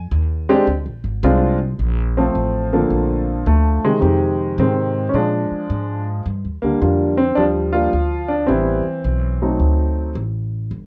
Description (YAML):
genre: jazz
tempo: 108 BPM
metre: 4/4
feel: swing 67% on 8ths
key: Bb major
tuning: A4 = 440 Hz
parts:
  - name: upright bass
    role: bass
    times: 0.0-10.9 s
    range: G1 to Bb2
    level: -23 LUFS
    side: equal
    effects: none
  - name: clear grand piano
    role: melody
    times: 0.5-10.1 s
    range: C3 to A4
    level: -20 LUFS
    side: equal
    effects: none
room: moderate studio reverb, RT60 0.6 s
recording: worn, warbling old tape, cassette tape, warbly pitch drift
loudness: -19 LUFS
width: mono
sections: 0.0-1.8 A section; 1.8-10.9 B section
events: grand piano solo 0.0-1.8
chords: 0.0 Bb9; 1.8 Bbmaj9; 4.0 Fm7; 5.1 Bb7; 6.2 Ebmaj9; 8.5 Am9; 9.6 D7b9